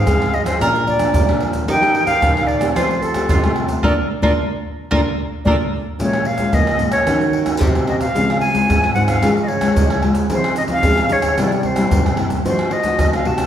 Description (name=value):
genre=samba and choro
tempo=111 BPM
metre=4/4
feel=straight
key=Bb major, Bb minor from 6.0 s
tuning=A4 = 438 Hz
part: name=silver concert flute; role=melody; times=0.0-13.5 s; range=A4 to A5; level=-20 LUFS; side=equal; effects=none
part: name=bowl-back mandolin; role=second line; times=0.0-5.6 s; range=Eb4 to Bb4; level=-24 LUFS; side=right 1 dB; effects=none
part: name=nylon-string guitar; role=accompaniment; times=0.0-13.5 s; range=F2 to G4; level=-22 LUFS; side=left 2 dB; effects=none
part: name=nylon-string guitar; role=bass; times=0.0-13.5 s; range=Ab2 to Bb3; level=-22 LUFS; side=right 1 dB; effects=none
part: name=egg shaker, surdo, pandeiro and tamborim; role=percussion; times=0.1-13.5 s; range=none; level=-20 LUFS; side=equal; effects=none
room=wet recital hall reverb, RT60 1.4 s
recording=recorded in a church or concert hall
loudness=-14 LUFS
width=side -10 dB against mid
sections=0.0-6.0 A section; 6.0-13.5 B section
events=band accent 3.8-6.0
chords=0.0 Abadd9; 0.6 Bbmaj7; 1.7 Eb; 2.8 Fadd9; 3.8 Bbmaj7; 6.0 Bbm7; 7.1 Ebm7; 8.2 Dbmaj7; 9.2 Bbm7/Db; 10.3 Dbmaj9; 11.4 C7; 12.5 F7b9